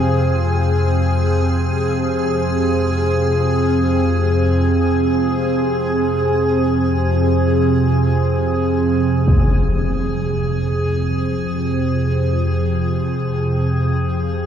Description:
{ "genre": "dark ambient drone", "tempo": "free time", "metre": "none", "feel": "none", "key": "F minor", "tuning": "A4 = 440 Hz", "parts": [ { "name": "deep dark ambient pad", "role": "sustained chords", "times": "0.0-14.5 s", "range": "C4 to F5", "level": "-21 LUFS", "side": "right 2 dB", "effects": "chorus, built-in reverb" }, { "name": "organ-like drone", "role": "drone", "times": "0.0-14.5 s", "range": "F2 to C3", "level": "-18 LUFS", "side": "equal", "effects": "ensemble chorus, built-in reverb" }, { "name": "icy glass pad", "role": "texture", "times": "0.0-14.5 s", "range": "Ab4", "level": "-24 LUFS", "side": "equal", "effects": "chorus, built-in reverb" }, { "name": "impact", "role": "percussion", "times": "9.3-9.5 s", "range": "none", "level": "-21 LUFS", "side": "equal", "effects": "low-pass filter on sfx" } ], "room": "wet huge ambient reverb, RT60 7.6 s", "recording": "dark, warm production", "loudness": "-15 LUFS", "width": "side -8 dB against mid", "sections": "0.0-9.3 A section; 9.3-14.5 B section", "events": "filter sweep on synth drone 9.3-14.5", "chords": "0.0 Fm" }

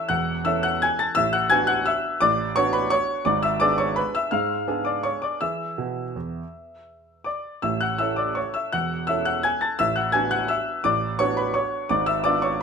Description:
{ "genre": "classical, piano waltz", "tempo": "158-182 BPM", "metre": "3/4", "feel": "rubato", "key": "A major", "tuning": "A4 = 443 Hz", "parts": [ { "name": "clear concert grand piano", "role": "solo", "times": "0.0-12.6 s", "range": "E1 to A6", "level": "-21 LUFS", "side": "equal", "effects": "none" } ], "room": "light reverb", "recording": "minimal, uncompressed stereo recording", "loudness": "-21 LUFS", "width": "side -6 dB against mid", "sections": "0.0-12.6 A section", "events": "none", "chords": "0.0 A; 1.2 Bm7/A; 3.3 G#dim7; 5.4 E; 7.6 A; 9.8 Bm7/A; 11.9 G#dim7" }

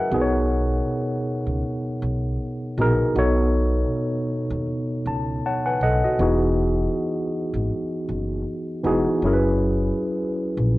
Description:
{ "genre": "hip hop", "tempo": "79 BPM", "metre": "4/4", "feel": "swing 55% on 16ths", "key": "B major", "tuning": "A4 = 443 Hz", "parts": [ { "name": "tine electric piano", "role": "accompaniment", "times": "0.0-10.8 s", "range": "B2 to A5", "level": "-22 LUFS", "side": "equal", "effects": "medium stereo tremolo" }, { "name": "upright bass", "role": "bass", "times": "0.1-10.7 s", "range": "E1 to D#2", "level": "-24 LUFS", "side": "equal", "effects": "none" } ], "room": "moderate small room reverb, RT60 0.6 s", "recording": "worn, warbling old tape, cassette tape, warbly pitch drift", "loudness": "-20 LUFS", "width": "side -18 dB against mid", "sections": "0.0-10.8 A section", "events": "tine electric piano fill 4.7-6.2", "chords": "0.1 B6; 3.1 B7; 6.2 Emaj7; 9.2 F#7sus4" }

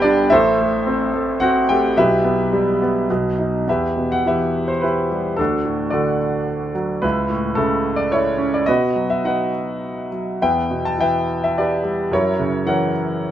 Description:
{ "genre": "classical, lyrical solo piano", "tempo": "107 BPM", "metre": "3/4", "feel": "uneven beats, rubato", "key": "E minor", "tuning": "A4 = 444 Hz", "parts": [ { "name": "clear concert grand piano", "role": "solo", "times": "0.0-13.3 s", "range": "G1 to B5", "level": "-17 LUFS", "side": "equal", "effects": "none" } ], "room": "light reverb", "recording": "none", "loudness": "-17 LUFS", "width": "side -11 dB against mid", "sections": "0.0-3.7 A section; 3.7-13.3 B section", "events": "none", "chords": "0.3 Am; 2.0 Em/B; 3.1 B; 3.7 Em; 5.4 D; 7.0 Aadd9/C#; 8.7 B; 10.4 Em; 12.1 F#7" }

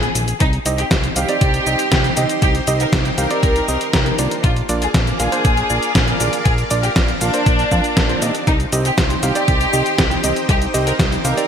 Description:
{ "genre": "italo disco", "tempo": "119 BPM", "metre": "4/4", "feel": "straight", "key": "C minor", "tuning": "A4 = 441 Hz", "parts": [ { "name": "rich symphonic violin section", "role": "melody", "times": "0.0-11.5 s", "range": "D4 to Bb4", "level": "-21 LUFS", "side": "left 1 dB", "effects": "ping-pong delay" }, { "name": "fat analog bass", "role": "bass", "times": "0.0-11.3 s", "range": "Bb1 to Bb2", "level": "-21 LUFS", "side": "equal", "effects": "tube saturation" }, { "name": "detuned 8-bit digital drum machine", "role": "drums", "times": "0.0-11.5 s", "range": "cabasa, hi-hat, snare drum", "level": "-21 LUFS", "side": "equal", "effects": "overdrive, gated reverb" }, { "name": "string machine, full ensemble", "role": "sustained chords", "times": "0.4-11.5 s", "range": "Eb4 to D6", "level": "-25 LUFS", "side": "equal", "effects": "ensemble chorus" }, { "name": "electronic kick drum", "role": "drums", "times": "0.4-11.1 s", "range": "none", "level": "-19 LUFS", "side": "equal", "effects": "overdrive" }, { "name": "warm electric grand piano", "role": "stabs", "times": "0.7-11.5 s", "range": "Bb3 to F5", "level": "-23 LUFS", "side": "right 4 dB", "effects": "none" } ], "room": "moderate lush hall reverb, RT60 1.9 s", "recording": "bright 1980s-style digital production", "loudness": "-14 LUFS", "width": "side -8 dB against mid", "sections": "0.0-11.5 A section", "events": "none", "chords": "0.4 Cm; 4.4 Bb; 8.5 Cm" }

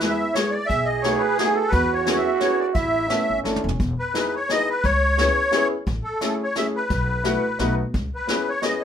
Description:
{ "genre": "musette waltz", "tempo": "174 BPM", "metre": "3/4", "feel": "swing 55% on 8ths", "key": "A major, E major from 3.8 s", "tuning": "A4 = 439 Hz", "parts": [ { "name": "musette accordion", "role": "melody", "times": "0.0-8.8 s", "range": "G#4 to E5", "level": "-23 LUFS", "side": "left 1 dB", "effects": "none" }, { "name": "growling trombone", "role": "second line", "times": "0.0-3.8 s", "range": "B3 to G#4", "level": "-24 LUFS", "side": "right 7 dB", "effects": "none" }, { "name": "warm upright piano", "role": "accompaniment", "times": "0.0-8.8 s", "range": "G#3 to A4", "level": "-26 LUFS", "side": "left 2 dB", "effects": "none" }, { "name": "upright bass", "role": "bass", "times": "0.0-8.1 s", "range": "E1 to E2", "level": "-26 LUFS", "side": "equal", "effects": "none" }, { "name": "vintage brush drum kit", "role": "drums", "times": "0.0-8.7 s", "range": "hi-hat, kick drum, snare drum, toms", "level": "-27 LUFS", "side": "left 1 dB", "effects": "none" } ], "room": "moderate small room reverb, RT60 0.5 s", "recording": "minimal, uncompressed stereo recording", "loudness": "-19 LUFS", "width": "side -8 dB against mid", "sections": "0.0-3.8 A section; 3.8-8.8 B section", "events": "drum fill 3.4-3.8", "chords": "0.0 E; 0.7 B7; 1.7 E6; 2.8 A; 3.8 Emaj7; 4.8 C#m7; 5.9 Amaj7; 6.9 B7sus4; 7.6 B7; 7.9 C#m7" }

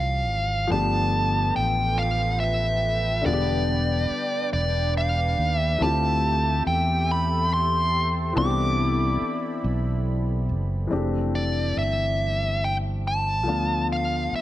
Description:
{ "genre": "slow six-eight R&B", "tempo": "47 BPM (dotted quarters)", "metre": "6/8", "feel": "straight", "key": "unclear", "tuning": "A4 = 440 Hz", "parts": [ { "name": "dark smooth lead guitar", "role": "melody", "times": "0.0-14.4 s", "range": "D5 to D6", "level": "-25 LUFS", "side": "equal", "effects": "overdrive" }, { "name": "warm grand piano", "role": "accompaniment", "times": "0.0-14.4 s", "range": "D3 to G4", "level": "-29 LUFS", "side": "left 4 dB", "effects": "none" }, { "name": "fretless electric bass", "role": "bass", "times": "0.0-14.4 s", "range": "E1 to E2", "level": "-25 LUFS", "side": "right 1 dB", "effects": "analog chorus" }, { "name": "warm analog pad", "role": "sustained chords", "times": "0.7-10.9 s", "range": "D4 to B5", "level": "-35 LUFS", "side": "right 2 dB", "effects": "chorus" } ], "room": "light reverb", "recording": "none", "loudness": "-21 LUFS", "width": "side -14 dB against mid", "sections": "0.7-10.9 A section; 10.9-14.4 B section", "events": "none", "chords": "0.0 Dm11 (rootless); 0.7 G9; 3.2 Em7; 5.8 Dm11; 8.4 Cmaj9; 10.9 Fmaj13; 13.5 Dm6" }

